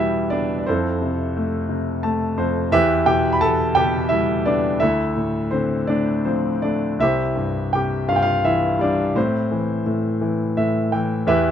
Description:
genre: classical, lyrical solo piano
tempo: 54-59 BPM (dotted quarters)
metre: 6/8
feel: rubato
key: A minor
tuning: A4 = 440 Hz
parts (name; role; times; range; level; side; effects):
- warm grand piano; solo; 0.0-11.5 s; C2 to B5; -18 LUFS; equal; none
room: light reverb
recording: close, detailed microphones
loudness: -18 LUFS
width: side -9 dB against mid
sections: 0.0-11.5 A section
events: grand piano fill 1.7-2.7, 10.2-11.3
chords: 0.0 Em; 0.7 Fmaj7; 2.7 Em; 4.8 Dmadd9; 7.0 C; 9.2 Am

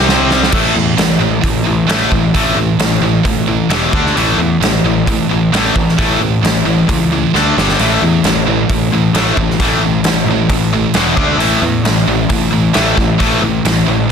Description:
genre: hard rock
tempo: 132 BPM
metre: 4/4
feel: straight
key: unclear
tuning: A4 = 442 Hz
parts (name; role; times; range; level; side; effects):
- cranked stack guitar; riff; 0.0-14.1 s; E2 to D4; -16 LUFS; left 9 dB; overdrive
- heavy high-gain guitar; riff; 0.0-14.1 s; E2 to D4; -17 LUFS; right 12 dB; distortion
- fuzz picked electric bass; bass; 0.0-14.1 s; E1 to E2; -18 LUFS; right 1 dB; overdrive
- huge arena drum kit; drums; 0.1-13.8 s; crash cymbal, hi-hat, kick drum, snare drum; -16 LUFS; right 1 dB; none
room: light reverb, studio ambience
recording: dense, heavily limited modern master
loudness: -11 LUFS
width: side -7 dB against mid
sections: 0.5-14.1 A section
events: drum fill 0.0-0.5, 7.3-7.8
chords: 0.0 C5; 0.5 A5; 3.7 E5; 3.9 D5; 4.2 A5; 7.3 D5; 7.6 G5; 7.8 A5; 11.0 E5; 11.2 D5; 11.4 A5

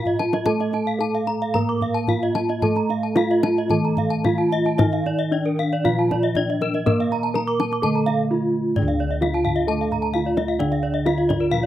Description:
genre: Balinese gamelan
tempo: 111-131 BPM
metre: 4/4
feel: straight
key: D pelog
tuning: A4 = 439 Hz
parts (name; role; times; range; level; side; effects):
- gamelan-type bronze metallophone; melody; 0.0-11.7 s; Bb3 to Bb4; -23 LUFS; equal; none
- gamelan-type bronze metallophone; arpeggios; 0.0-11.6 s; Bb4 to Bb5; -27 LUFS; left 6 dB; slapback echo
- gamelan-type bossed gongs; bass; 0.0-11.7 s; D2 to Bb4; -27 LUFS; left 1 dB; none
- gamelan-type bronze metallophone; arpeggios; 0.1-11.7 s; Bb4 to D6; -28 LUFS; right 6 dB; none
- kendang; percussion; 0.1-11.4 s; none; -26 LUFS; left 2 dB; none
- gamelan-type bronze metallophone; accompaniment; 0.5-11.7 s; D3 to Bb3; -26 LUFS; right 3 dB; none
room: little or no reverb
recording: recorded outdoors, with no room sound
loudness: -19 LUFS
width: side -12 dB against mid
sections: 0.0-8.8 A section; 8.8-11.7 B section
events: drum fill 0.0-0.5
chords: none

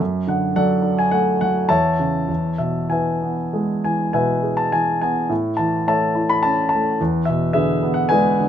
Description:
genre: classical, lyrical solo piano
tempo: 94-110 BPM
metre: 3/4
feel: rubato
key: unclear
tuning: A4 = 440 Hz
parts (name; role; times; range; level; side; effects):
- warm grand piano; solo; 0.0-8.5 s; E2 to B5; -17 LUFS; equal; none
room: light reverb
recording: close, detailed microphones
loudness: -17 LUFS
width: side -9 dB against mid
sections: 0.0-8.5 A section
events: none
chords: 0.0 D/F#; 1.7 A/E; 2.3 E; 5.3 A; 7.0 E7

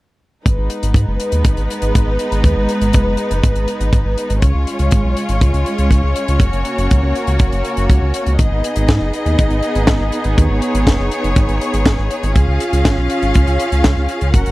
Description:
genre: italo disco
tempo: 121 BPM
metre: 4/4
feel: straight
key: G# dorian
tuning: A4 = 439 Hz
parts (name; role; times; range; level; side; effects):
- clear symphonic string section; sustained chords; 0.5-14.5 s; G#3 to F#5; -19 LUFS; equal; none
- round analog bass; bass; 0.5-14.5 s; F#1 to G#2; -17 LUFS; equal; none
- kick drum; drums; 0.5-14.4 s; none; -13 LUFS; equal; none
- tight funk drum kit; drums; 0.5-14.5 s; hi-hat, snare drum; -22 LUFS; left 1 dB; none
room: little or no reverb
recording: dry, close 1970s-style studio recording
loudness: -13 LUFS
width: side -19 dB against mid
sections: 0.5-14.5 A section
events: none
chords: 0.5 G#m; 4.4 C#; 6.4 F#; 8.4 G#m; 12.4 C#

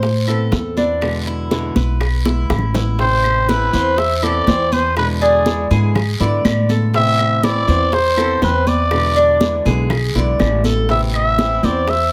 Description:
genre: latin, Cuban son and guajira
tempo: 122 BPM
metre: 4/4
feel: straight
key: A harmonic minor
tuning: A4 = 440 Hz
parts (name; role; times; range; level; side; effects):
- nylon-string guitar; accompaniment; 0.0-11.9 s; B2 to E4; -26 LUFS; equal; none
- Cuban tres; arpeggios; 0.0-12.1 s; D4 to D5; -23 LUFS; equal; none
- upright bass; bass; 0.0-12.1 s; A1 to A2; -21 LUFS; equal; none
- bongos; percussion; 0.0-12.1 s; none; -29 LUFS; equal; none
- congas; percussion; 0.0-12.1 s; none; -25 LUFS; equal; none
- guiro; percussion; 0.0-12.1 s; none; -34 LUFS; equal; none
- claves; percussion; 0.3-11.4 s; none; -33 LUFS; equal; none
- trumpet with cup mute; melody; 3.0-12.1 s; G#4 to E5; -20 LUFS; equal; plate reverb
room: moderate studio ambience, RT60 0.5 s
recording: faint mains hum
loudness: -16 LUFS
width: mono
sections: 0.0-3.0 A section; 3.0-12.1 B section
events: drum fill 2.3-3.0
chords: 0.0 Amadd9; 1.0 E7; 3.0 Amadd9; 5.0 E7; 6.9 Amadd9; 8.9 E7; 10.9 Amadd9

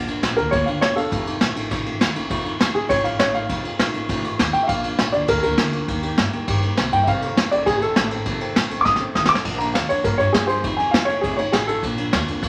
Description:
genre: rockabilly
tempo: 202 BPM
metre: 4/4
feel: straight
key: Bb major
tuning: A4 = 440 Hz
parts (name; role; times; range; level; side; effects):
- picked steel-string acoustic guitar; accompaniment; 0.0-12.5 s; F2 to A4; -31 LUFS; equal; none
- upright bass; bass; 0.0-12.5 s; E1 to G2; -31 LUFS; equal; none
- vintage brush drum kit; drums; 0.1-12.5 s; crash cymbal, kick drum, ride cymbal, snare drum; -24 LUFS; equal; none
- dark upright piano; melody; 0.4-11.8 s; Ab4 to Eb6; -23 LUFS; equal; none
room: moderate large studio reverb, RT60 1.1 s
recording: vinyl crackle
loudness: -21 LUFS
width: mono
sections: 0.0-9.4 A section; 9.4-12.5 B section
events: drum fill 8.9-9.4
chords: 0.0 Bb; 1.1 F7; 4.7 Bb; 5.9 Eb; 7.1 F7; 9.4 Bb; 10.6 F7; 11.8 Bb

